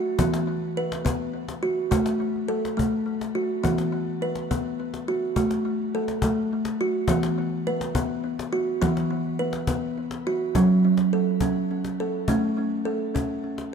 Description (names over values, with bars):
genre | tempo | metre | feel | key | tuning
world meditative, meditative tuned percussion | 104 BPM | 3/4 | straight | unclear | A4 = 440 Hz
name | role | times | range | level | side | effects
kalimba | arpeggios | 0.0-13.7 s | E3 to B4 | -23 LUFS | right 1 dB | tape echo, shimmer reverb
cajon | percussion | 0.2-13.7 s | none | -29 LUFS | left 3 dB | none
room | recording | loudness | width
wet echo chamber reverb, RT60 1.5 s, small room ambience | dark, warm production | -23 LUFS | side -6 dB against mid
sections
0.0-10.5 A section; 10.5-13.7 B section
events
none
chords
0.2 E5; 1.9 F#m/A; 3.6 E5; 5.4 F#m/A; 7.1 E5; 10.5 F#m; 12.3 A